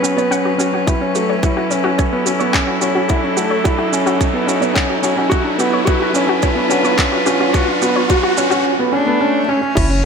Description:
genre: piano and strings electronica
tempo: 108 BPM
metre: 4/4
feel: straight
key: unclear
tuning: A4 = 440 Hz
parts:
  - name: dark string quartet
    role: sustained chords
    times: 0.0-10.1 s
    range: E3 to C#5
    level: -21 LUFS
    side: left 1 dB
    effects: none
  - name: warbly dusty pluck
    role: arpeggios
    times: 0.0-9.8 s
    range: C#4 to F#5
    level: -22 LUFS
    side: left 2 dB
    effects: chorus, sidechain pumping, ping-pong delay
  - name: felt-muted upright piano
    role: riff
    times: 0.0-10.0 s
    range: A3 to F#4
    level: -18 LUFS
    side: right 1 dB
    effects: ping-pong delay
  - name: organic electronic drum kit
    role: drums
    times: 0.0-9.9 s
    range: crash cymbal, handclaps, shaker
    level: -23 LUFS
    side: right 2 dB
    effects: none
  - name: riser and swell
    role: sound effects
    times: 0.0-9.8 s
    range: none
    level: -22 LUFS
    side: equal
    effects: none
  - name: electronic kick drum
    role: drums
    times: 0.9-9.9 s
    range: none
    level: -18 LUFS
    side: equal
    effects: none
  - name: warm cello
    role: melody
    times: 8.9-10.1 s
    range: C#4 to D4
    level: -19 LUFS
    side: left 1 dB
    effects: none
  - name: round analog bass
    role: bass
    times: 9.8-10.1 s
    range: F#1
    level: -17 LUFS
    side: equal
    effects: sidechain pumping
room: moderate echo chamber reverb, RT60 2.0 s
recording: none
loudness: -13 LUFS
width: side -6 dB against mid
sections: 0.0-9.8 A section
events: build-up 0.0-9.8; riser 0.0-8.7; swell 8.7-9.8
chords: 0.0 E6/F# (rootless); 0.9 F#m7; 5.3 Bmadd9/F#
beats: 0.32 | 0.88 1.43 1.99 2.54 | 3.10 3.65 4.21 4.76 | 5.32 5.88 6.43 6.99 | 7.54 8.10 8.65 9.21 | 9.76

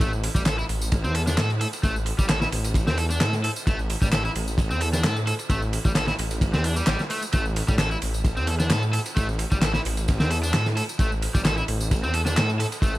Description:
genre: breakbeat, breaks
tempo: 131 BPM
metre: 4/4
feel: swing 53% on 16ths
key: A minor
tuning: A4 = 436 Hz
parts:
  - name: cranked stack guitar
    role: riff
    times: 0.0-12.9 s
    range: G3 to A4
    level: -29 LUFS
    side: equal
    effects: overdrive, dub echo
  - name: detuned saw bass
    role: bass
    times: 0.0-13.0 s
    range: A1 to A2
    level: -26 LUFS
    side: equal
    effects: none
  - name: cloth-damped thuddy drum kit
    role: drums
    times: 0.0-12.9 s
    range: kick drum, ride cymbal, snare drum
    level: -25 LUFS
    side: equal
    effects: none
  - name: garage drum kit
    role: drums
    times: 0.0-13.0 s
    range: handclaps, hi-hat, tambourine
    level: -32 LUFS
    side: equal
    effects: none
room: studio reverb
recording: vinyl crackle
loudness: -21 LUFS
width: side -17 dB against mid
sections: 0.0-13.0 A section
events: none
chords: 0.0 A5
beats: | 0.00 0.46 0.92 1.38 | 1.83 2.29 2.75 3.21 | 3.67 4.12 4.58 5.04 | 5.50 5.96 6.42 6.87 | 7.33 7.79 8.25 8.71 | 9.16 9.62 10.08 10.54 | 10.99 11.45 11.91 12.37 | 12.83

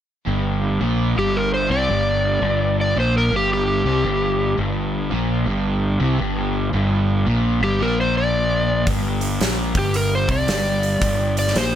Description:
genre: blues rock power trio and southern rock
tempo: 112 BPM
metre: 4/4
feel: swing 64% on 8ths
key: G minor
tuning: A4 = 441 Hz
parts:
  - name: crunchy overdriven guitar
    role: riff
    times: 0.3-11.8 s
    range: G2 to C3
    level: -22 LUFS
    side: equal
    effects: none
  - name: fuzz fingered electric bass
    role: bass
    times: 0.3-11.8 s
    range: G1 to C2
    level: -22 LUFS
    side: equal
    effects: overdrive
  - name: overdriven slide guitar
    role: melody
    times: 1.2-11.7 s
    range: G4 to D5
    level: -20 LUFS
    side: left 1 dB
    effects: slapback echo
  - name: big rock drum kit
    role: drums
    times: 8.9-11.7 s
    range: hi-hat, kick drum, snare drum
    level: -24 LUFS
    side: equal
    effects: none
room: little or no reverb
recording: none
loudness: -17 LUFS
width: side -10 dB against mid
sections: 0.3-11.8 A section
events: none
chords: 0.3 Gm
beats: | 0.28 0.81 1.35 1.89 | 2.43 2.97 3.51 4.04 | 4.58 5.12 5.66 6.19 | 6.73 7.27 7.80 8.34 | 8.88 9.41 9.95 10.48 | 11.02 11.55

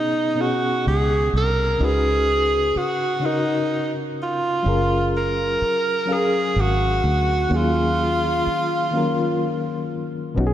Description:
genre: R&B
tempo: 42 BPM (dotted quarters)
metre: 6/8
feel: straight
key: unclear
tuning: A4 = 441 Hz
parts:
  - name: breathy tenor saxophone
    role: melody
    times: 0.0-9.9 s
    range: D#4 to A#4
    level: -21 LUFS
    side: right 1 dB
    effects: none
  - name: reed electric piano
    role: accompaniment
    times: 0.0-10.5 s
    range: B2 to E#5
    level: -25 LUFS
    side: left 3 dB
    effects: fast tremolo
  - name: fingered electric bass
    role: bass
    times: 0.9-10.5 s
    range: F#1 to D#2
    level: -22 LUFS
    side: equal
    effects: none
room: wet lush hall reverb, RT60 2.9 s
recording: dreamy mix soaked in reverb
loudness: -18 LUFS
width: side -11 dB against mid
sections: 0.0-10.5 A section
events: none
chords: 0.0 B69; 1.8 C#9sus4; 4.7 F#maj9; 7.5 D#m11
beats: 0.38 | 1.80 3.23 | 4.66 6.09 | 7.52 8.95 | 10.38

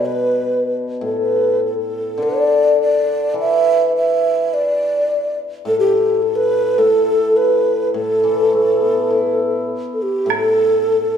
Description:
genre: chinese traditional, Chinese chamber ensemble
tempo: 104 BPM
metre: 4/4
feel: straight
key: A shang mode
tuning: A4 = 442 Hz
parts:
  - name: breathy mellow xiao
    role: melody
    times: 0.0-11.2 s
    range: G4 to E5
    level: -16 LUFS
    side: right 2 dB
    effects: none
  - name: hammered dulcimer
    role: accompaniment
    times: 0.0-11.2 s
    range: A2 to E4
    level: -18 LUFS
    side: left 4 dB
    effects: none
  - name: woodblock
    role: percussion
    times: 10.3-10.4 s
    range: none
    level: -24 LUFS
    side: right 5 dB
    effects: none
room: light reverb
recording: small room reverb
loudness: -14 LUFS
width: side -8 dB against mid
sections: 0.0-10.3 A section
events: none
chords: none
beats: 0.45 | 1.04 1.62 2.20 2.79 | 3.37 3.94 4.51 5.08 | 5.66 6.23 6.80 7.38 | 7.96 8.53 9.11 9.70 | 10.29 10.88

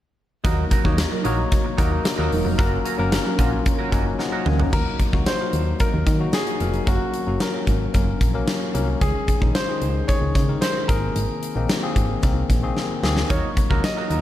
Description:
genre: 1980s-style pop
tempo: 112 BPM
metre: 4/4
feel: straight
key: Eb dorian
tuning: A4 = 439 Hz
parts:
  - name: barky tine electric piano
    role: accompaniment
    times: 0.4-14.2 s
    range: Eb3 to Bb5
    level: -26 LUFS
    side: left 5 dB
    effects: none
  - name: electric guitar at the edge of break-up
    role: riff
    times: 0.4-4.6, 13.3-14.2 s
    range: Db4 to Bb4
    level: -30 LUFS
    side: right 6 dB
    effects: wide subtle chorus, ping-pong delay
  - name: solid FM bass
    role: bass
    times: 0.4-14.2 s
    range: Fb1 to Eb3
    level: -24 LUFS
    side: equal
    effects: none
  - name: huge arena drum kit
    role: drums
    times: 0.4-14.2 s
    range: crash cymbal, hi-hat, kick drum, snare drum, toms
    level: -22 LUFS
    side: equal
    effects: none
  - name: mellow synth brass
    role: stabs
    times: 1.1-4.7 s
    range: Gb3 to Bb4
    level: -30 LUFS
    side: right 3 dB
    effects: chorus
  - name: bright concert grand piano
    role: melody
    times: 4.7-14.2 s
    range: Gb4 to Eb5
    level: -28 LUFS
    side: equal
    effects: ping-pong delay
room: light reverb, studio reverb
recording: none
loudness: -19 LUFS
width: side -13 dB against mid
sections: 0.4-4.7 A section; 4.7-14.2 B section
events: tine electric piano fill 3.7-4.7; drum fill 4.2-4.7, 12.8-13.3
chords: 0.4 Ebm; 2.6 Gb; 4.7 Ebm; 6.9 Gb; 9.0 Dbsus2; 10.9 Abadd9; 13.3 Ebm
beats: | 0.44 0.98 1.51 2.05 | 2.59 3.12 3.66 4.19 | 4.73 5.26 5.80 6.34 | 6.87 7.41 7.94 8.48 | 9.02 9.55 10.09 10.62 | 11.16 11.69 12.23 12.77 | 13.30 13.84

